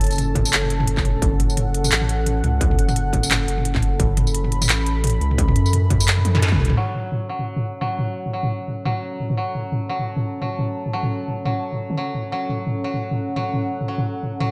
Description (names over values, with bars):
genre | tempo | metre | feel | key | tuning
half-time drum and bass | 173 BPM | 4/4 | swing 56% on 16ths, half-time | F# minor | A4 = 440 Hz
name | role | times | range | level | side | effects
dark analog pad | sustained chords | 0.0-14.5 s | C#4 to B5 | -31 LUFS | equal | chorus, sidechain pumping
saturated sub bass | bass | 0.0-6.8 s | F#1 to F#2 | -23 LUFS | equal | none
industrial drum kit | drums | 0.0-14.5 s | handclaps, hi-hat, snare drum, tambourine, toms | -25 LUFS | equal | low-pass filter on toms, low-pass filter on hats, low-pass filter on perc, low-pass filter on snare, low-pass filter on room
electronic kick drum | drums | 0.4-6.6 s | none | -24 LUFS | equal | distortion
koto | arpeggios | 6.8-14.5 s | F#3 | -30 LUFS | equal | low-pass filter, delay
room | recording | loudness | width
moderate lush hall reverb, RT60 1.8 s, digital ambience | bright 1980s-style digital production | -21 LUFS | mono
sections
0.0-6.8 A section; 6.8-14.5 B section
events
drop 0.0-6.8; drum fill 6.3-6.8; band accent 6.4; filter sweep on koto 6.8-14.5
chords
0.0 F#m